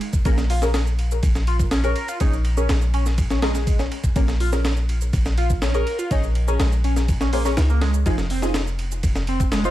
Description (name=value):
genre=breakbeat, breaks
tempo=123 BPM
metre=4/4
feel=straight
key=unclear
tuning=A4 = 441 Hz
part: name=breakbeat sampler-style drum kit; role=drums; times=0.0-9.7 s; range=hi-hat, kick drum, ride cymbal, snare drum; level=-24 LUFS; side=equal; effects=studio reverb
part: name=shaker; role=drums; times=0.1-9.7 s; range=none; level=-39 LUFS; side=right 8 dB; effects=studio reverb
part: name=overdriven synth lead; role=riff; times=0.3-9.7 s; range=F3 to Bb4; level=-27 LUFS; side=equal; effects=phaser, ping-pong delay
part: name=band-passed chord stab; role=stabs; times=0.3-9.7 s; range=Db4 to Db5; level=-28 LUFS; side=left 1 dB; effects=phaser, wide subtle chorus, ping-pong delay
part: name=warm 808-style bass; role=bass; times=0.3-9.7 s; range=F1 to Db2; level=-21 LUFS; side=equal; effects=tube saturation
room=little or no reverb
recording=vinyl crackle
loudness=-18 LUFS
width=side -14 dB against mid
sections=0.0-9.7 A section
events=none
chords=0.3 Bbm7; 8.1 Fm7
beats=| 0.26 0.75 1.23 1.72 | 2.21 2.70 3.19 3.67 | 4.16 4.65 5.14 5.62 | 6.11 6.60 7.09 7.58 | 8.06 8.55 9.04 9.53